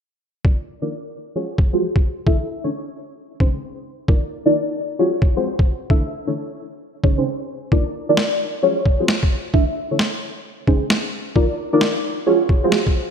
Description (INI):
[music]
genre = UK garage, two-step garage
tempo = 132 BPM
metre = 4/4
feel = swing 64% on 16ths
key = unclear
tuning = A4 = 438 Hz
[part]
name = deep mellow chord stab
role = stabs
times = 0.4-12.8 s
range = Db4 to E5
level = -20 LUFS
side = equal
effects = chorus, phaser, ping-pong delay
[part]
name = electronic kick drum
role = drums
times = 0.4-12.9 s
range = none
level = -16 LUFS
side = equal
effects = overdrive, studio reverb
[part]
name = electronic snare drum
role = drums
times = 8.2-12.8 s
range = none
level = -22 LUFS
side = right 1 dB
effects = overdrive, studio reverb
[sound]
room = moderate lush hall reverb, RT60 1.8 s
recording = bright 1980s-style digital production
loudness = -17 LUFS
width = side -7 dB against mid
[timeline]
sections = 0.4-13.1 A section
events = filter sweep on synth stab 0.4-13.1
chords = 0.4 Bbadd11/Eb; 1.4 Fm; 2.3 Dsus2; 2.9 Dbsus2; 4.1 Bbadd11/Eb; 5.0 Fm; 5.9 Dsus2; 6.6 Dbsus2; 7.7 Bbadd11/Eb; 8.6 Fm; 9.5 Dsus2; 10.2 Dbsus2; 11.4 Bbadd11/Eb; 12.3 Fm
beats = | 0.45 0.90 1.36 1.81 | 2.27 2.72 3.17 3.63 | 4.08 4.54 4.99 5.45 | 5.90 6.36 6.81 7.27 | 7.72 8.18 8.63 9.08 | 9.54 9.99 10.45 10.90 | 11.36 11.81 12.27 12.72